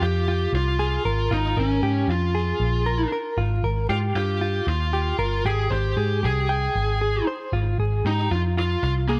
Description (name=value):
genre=jangly indie pop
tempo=116 BPM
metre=4/4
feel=straight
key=Ab major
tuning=A4 = 440 Hz
part: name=lead guitar through a small cranked amp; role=melody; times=0.0-9.2 s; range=Bb3 to Ab4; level=-29 LUFS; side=equal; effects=overdrive, digital delay
part: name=direct-recorded clean electric guitar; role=arpeggios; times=0.0-9.2 s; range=F4 to G5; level=-30 LUFS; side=equal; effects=tremolo
part: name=vintage muted picked electric bass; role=bass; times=0.0-9.2 s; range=G1 to Ab2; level=-26 LUFS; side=equal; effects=none
room=light reverb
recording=dark, warm production, vinyl crackle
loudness=-23 LUFS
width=mono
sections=0.0-9.2 A section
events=none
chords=0.0 Fm; 1.1 Bbm7/Ab; 3.4 Ebadd9/Ab; 5.5 Abmaj7; 7.5 Fm/Ab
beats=0.28 0.80 | 1.31 1.83 2.35 2.87 | 3.38 3.90 4.42 4.94 | 5.46 5.98 6.49 7.01 | 7.53 8.05 8.57 9.09